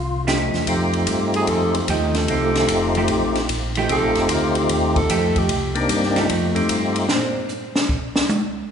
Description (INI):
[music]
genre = soul jazz organ trio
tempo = 150 BPM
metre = 4/4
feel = swing 67% on 8ths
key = F mixolydian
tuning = A4 = 442 Hz
[part]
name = percussive tonewheel organ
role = melody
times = 0.0-7.1 s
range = A3 to G4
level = -22 LUFS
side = left 1 dB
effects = slow rotary speaker, overdrive, chorus vibrato
[part]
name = tonewheel organ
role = bass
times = 0.0-7.3 s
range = F1 to Bb2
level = -25 LUFS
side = equal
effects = chorus vibrato, slow rotary speaker
[part]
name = vintage hollow-body jazz guitar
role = accompaniment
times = 0.3-7.4 s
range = F3 to G4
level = -25 LUFS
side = right 2 dB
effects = none
[part]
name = open jazz drum kit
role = drums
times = 0.3-8.4 s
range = hi-hat, kick drum, ride cymbal, snare drum, toms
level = -24 LUFS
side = left 1 dB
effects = none
[part]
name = breathy alto saxophone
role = melody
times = 1.4-5.8 s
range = C4 to A4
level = -24 LUFS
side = right 2 dB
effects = none
[sound]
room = wet concert hall reverb, RT60 2.0 s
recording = recorded in a church or concert hall, nothing above 10.9 kHz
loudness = -17 LUFS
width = side -7 dB against mid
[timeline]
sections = 0.7-8.7 A section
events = alto saxophone solo 0.7-8.7; drum solo 7.1-8.7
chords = 0.0 F9; 5.5 Cm7; 6.3 F9; 7.1 Bb9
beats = 0.28 | 0.68 1.08 1.48 1.89 | 2.29 2.69 3.09 3.49 | 3.89 4.29 4.70 5.09 | 5.50 5.90 6.30 6.70 | 7.10 7.50 7.89 8.29